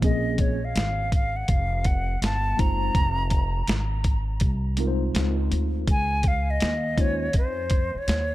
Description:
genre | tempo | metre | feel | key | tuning
hip hop, jazz-hop | 82 BPM | 4/4 | swing 64% on 16ths | Bb minor | A4 = 440 Hz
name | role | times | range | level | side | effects
hollow concert flute | melody | 0.0-8.3 s | C5 to Bb5 | -28 LUFS | equal | tape echo
mellow tine electric piano | accompaniment | 0.0-7.3 s | F3 to C5 | -30 LUFS | left 1 dB | medium stereo tremolo, tape echo
upright bass | bass | 0.0-8.3 s | F1 to F2 | -26 LUFS | equal | none
boom bap sampler-style drum kit | drums | 0.0-8.3 s | hi-hat, kick drum, snare drum | -23 LUFS | equal | none
room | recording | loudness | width
studio ambience | echo-heavy mix | -22 LUFS | side -16 dB against mid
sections
0.0-8.3 A section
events
none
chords
0.0 Bbm9; 2.2 Abmaj13; 3.0 Fm7; 5.9 Dbmaj7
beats
| 0.03 0.76 1.49 2.22 | 2.95 3.68 4.42 5.15 | 5.88 6.61 7.34 8.07

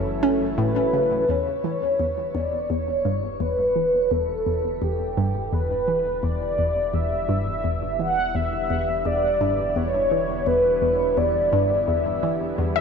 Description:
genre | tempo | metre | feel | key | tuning
ambient, sequencer-driven space music | 85 BPM | 4/4 | straight | E dorian | A4 = 440 Hz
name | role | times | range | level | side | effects
mellow horn-like synth lead | melody | 0.0-12.6 s | G4 to F#5 | -22 LUFS | equal | ensemble chorus, shimmer reverb, ping-pong delay
lush unison pad | sustained chords | 0.0-12.8 s | D3 to E4 | -32 LUFS | right 1 dB | chorus, shimmer reverb
hollow square pluck | riff | 0.0-12.7 s | E2 to C#4 | -26 LUFS | equal | chorus, phaser, ping-pong delay
warm sub bass | bass | 0.0-12.8 s | E1 to F#1 | -38 LUFS | equal | none
wide unison pluck | arpeggios | 12.8 s | E5 | -18 LUFS | left 13 dB | auto-pan
room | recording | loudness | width
wet plate reverb, RT60 3.1 s | echo-heavy mix | -20 LUFS | side -6 dB against mid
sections
0.0-1.3 A section; 1.3-12.8 B section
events
fade-in on analog synth pad 1.3-12.8; fade-in on sub bass 1.3-12.8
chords
0.0 F#m7; 1.3 Em7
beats
0.58 | 1.29 1.99 2.70 3.40 | 4.11 4.82 5.52 6.23 | 6.93 7.64 8.35 9.05 | 9.76 10.46 11.17 11.88 | 12.58

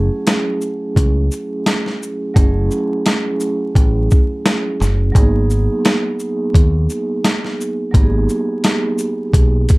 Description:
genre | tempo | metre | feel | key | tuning
hip hop, boom-bap hip-hop | 86 BPM | 4/4 | swing 59% on 16ths | F# dorian | A4 = 440 Hz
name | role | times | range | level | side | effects
vibraphone with soft mallets | accompaniment | 0.0-9.8 s | F#3 to G#4 | -20 LUFS | right 2 dB | high-pass filter, low-pass filter
deep dub fingered electric bass | bass | 0.0-9.7 s | F#1 to D#2 | -16 LUFS | equal | none
boom bap sampler-style drum kit | drums | 0.3-9.8 s | hi-hat, kick drum, shaker, snare drum | -14 LUFS | equal | none
room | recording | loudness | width
little or no reverb | dark, warm production, vinyl crackle | -14 LUFS | side -23 dB against mid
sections
0.0-9.8 A section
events
none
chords
0.0 F#m9; 5.2 G#m9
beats
0.27 0.96 1.66 | 2.36 3.06 3.75 4.45 | 5.15 5.85 6.55 7.24 | 7.94 8.64 9.34

